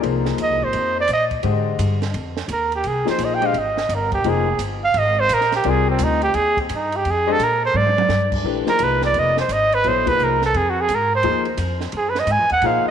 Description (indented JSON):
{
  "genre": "modal jazz",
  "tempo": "172 BPM",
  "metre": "4/4",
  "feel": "swing 65% on 8ths",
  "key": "F dorian",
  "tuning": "A4 = 440 Hz",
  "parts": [
    { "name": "warm concert grand piano", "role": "accompaniment", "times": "0.0-12.9 s", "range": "D3 to Eb5", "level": "-25 LUFS", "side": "left 12 dB", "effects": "none" },
    { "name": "upright bass", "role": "bass", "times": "0.0-12.9 s", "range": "F1 to Bb2", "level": "-24 LUFS", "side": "left 1 dB", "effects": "none" },
    { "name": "compact cocktail drum kit", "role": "drums", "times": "0.0-12.7 s", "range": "crash cymbal, hi-hat, kick drum, ride cymbal, snare drum, toms", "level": "-31 LUFS", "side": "right 6 dB", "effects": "none" },
    { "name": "warm trumpet", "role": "melody", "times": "0.4-12.9 s", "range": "C4 to Ab5", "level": "-18 LUFS", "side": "right 2 dB", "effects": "none" }
  ],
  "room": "wet plate reverb, RT60 2.3 s",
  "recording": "1960s-style stereo with parts hard left and right",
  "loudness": "-17 LUFS",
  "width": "side -8 dB against mid",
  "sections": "0.0-8.4 A section; 8.4-12.9 A section",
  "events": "trumpet solo 0.0-12.9; drum fill 7.7-8.1",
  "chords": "0.0 Fm11; 8.4 Bb9sus4",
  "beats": "| 0.04 0.39 0.74 1.09 | 1.44 1.79 2.14 2.49 | 2.84 3.19 3.54 3.90 | 4.25 4.60 4.95 5.30 | 5.65 6.00 6.35 6.70 | 7.05 7.39 7.75 8.09 | 8.44 8.79 9.14 9.49 | 9.84 10.19 10.54 10.89 | 11.24 11.59 11.94 12.28 | 12.63"
}